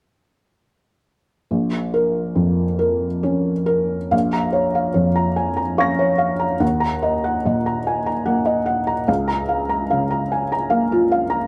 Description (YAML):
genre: neoclassical minimalist piano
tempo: 48 BPM (dotted quarters)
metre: 6/8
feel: rubato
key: unclear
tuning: A4 = 439 Hz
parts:
  - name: felt-muted upright piano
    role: solo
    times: 1.5-11.5 s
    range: Bb1 to Bb6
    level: -20 LUFS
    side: equal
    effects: none
room: light reverb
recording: none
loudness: -20 LUFS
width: mono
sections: 1.5-4.1 A section; 4.1-11.5 B section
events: none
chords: 1.5 Bbm; 6.6 Ebm; 9.1 Bbm/Db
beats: | 1.52 2.81 | 4.13 5.38 | 6.62 7.85 | 9.08 10.31